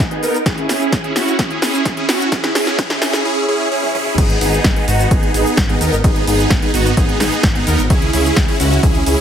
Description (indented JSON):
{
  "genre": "EDM, festival progressive house",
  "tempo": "129 BPM",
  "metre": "4/4",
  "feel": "straight",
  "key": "G# minor",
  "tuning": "A4 = 439 Hz",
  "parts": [
    { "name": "big-room dance drum kit", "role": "drums", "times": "0.0-9.2 s", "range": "cabasa, crash cymbal, hi-hat, ride cymbal, snare drum, toms", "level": "-20 LUFS", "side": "equal", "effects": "none" },
    { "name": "supersaw chords", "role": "riff", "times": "0.1-9.2 s", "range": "B3 to A#4", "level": "-16 LUFS", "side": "right 1 dB", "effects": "phaser, sidechain pumping, low-pass filter, ping-pong delay" },
    { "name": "electronic kick drum", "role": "drums", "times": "0.5-8.9 s", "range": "none", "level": "-16 LUFS", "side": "equal", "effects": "none" },
    { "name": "detuned saw bass", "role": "bass", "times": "4.2-9.2 s", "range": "G#1 to D#2", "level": "-18 LUFS", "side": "equal", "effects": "sidechain pumping" }
  ],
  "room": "moderate digital room reverb, RT60 1.0 s",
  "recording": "heavily compressed radio sound, multiband compression, high-pass filter",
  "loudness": "-13 LUFS",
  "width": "side -8 dB against mid",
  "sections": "0.0-4.2 A section; 4.2-9.2 B section",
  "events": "build-up 0.0-4.2; drum fill 0.0-3.3, 3.8-4.2; filter sweep on supersaw synth 0.0-4.2; drop 4.2-9.2",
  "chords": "0.5 C#m; 4.2 G#m; 7.9 C#m"
}